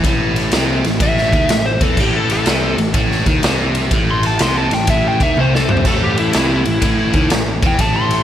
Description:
blues rock power trio and southern rock; 124 BPM; 4/4; swing 66% on 8ths; A4 = 440 Hz
biting overdriven guitar; riff; 0.0-8.2 s; A2 to E3; -19 LUFS; equal
fuzz picked electric bass; bass; 0.0-8.2 s; A1 to E2; -20 LUFS; equal; overdrive
raw garage drum kit; drums; 0.0-8.2 s; crash cymbal, kick drum, ride cymbal, snare drum, splash cymbal, toms; -17 LUFS; equal
biting lead guitar; melody; 1.0-8.2 s; E4 to C6; -19 LUFS; left 1 dB; overdrive
moderate lush hall reverb, RT60 1.9 s, studio ambience; big arena sound; -13 LUFS; side -10 dB against mid
0.0-8.2 A section
lead electric guitar solo 0.0-8.2; drum fill 5.4-5.9
0.0 A5

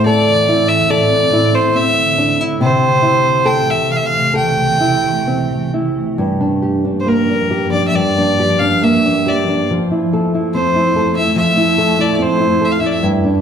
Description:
celtic folk, Celtic slow air; 64-73 BPM; 4/4; rubato; G dorian; A4 = 437 Hz
bright fiddle; melody; 0.0-13.0 s; Bb4 to G5; -15 LUFS; equal
nylon-string guitar; accompaniment; 0.0-13.4 s; G2 to A4; -16 LUFS; equal
granular cloud pad; sustained chords; 0.1-13.4 s; F2 to E4; -21 LUFS; equal; built-in reverb
moderate recital hall reverb, RT60 1.3 s; dark, warm production; -12 LUFS; side -8 dB against mid
0.0-6.2 A section; 6.2-13.4 B section
0.0 Am; 2.6 C6; 6.2 Gm7; 9.7 Fmaj7

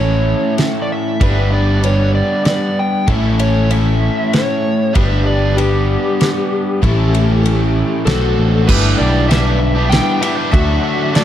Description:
folk rock and heartland rock; 96 BPM; 3/4; straight; G lydian; A4 = 440 Hz
overdriven slide guitar; melody; 0.0-11.2 s; G4 to G5; -20 LUFS; left 1 dB; tape echo
picked twelve-string acoustic guitar; accompaniment; 0.0-11.2 s; A2 to C#5; -21 LUFS; left 4 dB
crunchy overdriven guitar; riff; 0.0-11.2 s; G2 to B4; -18 LUFS; right 1 dB
picked electric bass; bass; 0.0-10.8 s; G1 to D2; -15 LUFS; equal
damped 70s drum kit; drums; 0.6-11.2 s; crash cymbal, kick drum, ride cymbal, snare drum; -18 LUFS; right 1 dB
light reverb; dark, warm production; -12 LUFS; side -11 dB against mid
0.0-8.7 A section; 8.7-11.2 B section
0.0 A; 1.2 G; 3.1 A; 5.0 G; 6.8 A; 8.1 D7; 8.7 G6; 10.5 Dadd9

